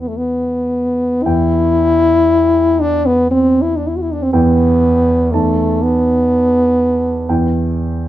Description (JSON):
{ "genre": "classical, romantic duo for French horn and grand piano", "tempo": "45-63 BPM", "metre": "4/4", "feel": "rubato", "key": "E minor", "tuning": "A4 = 440 Hz", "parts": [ { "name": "mellow French horn", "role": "melody", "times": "0.0-7.8 s", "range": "A3 to F#4", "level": "-13 LUFS", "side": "left 1 dB", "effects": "none" }, { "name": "dark grand piano", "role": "accompaniment", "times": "0.0-8.1 s", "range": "E2 to A5", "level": "-17 LUFS", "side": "right 1 dB", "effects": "none" } ], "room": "light reverb", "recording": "minimal, uncompressed stereo recording", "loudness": "-12 LUFS", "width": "side -14 dB against mid", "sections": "0.0-1.2 A section; 1.2-8.1 A section", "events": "none", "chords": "0.0 Em; 5.3 B7/E; 7.3 Em" }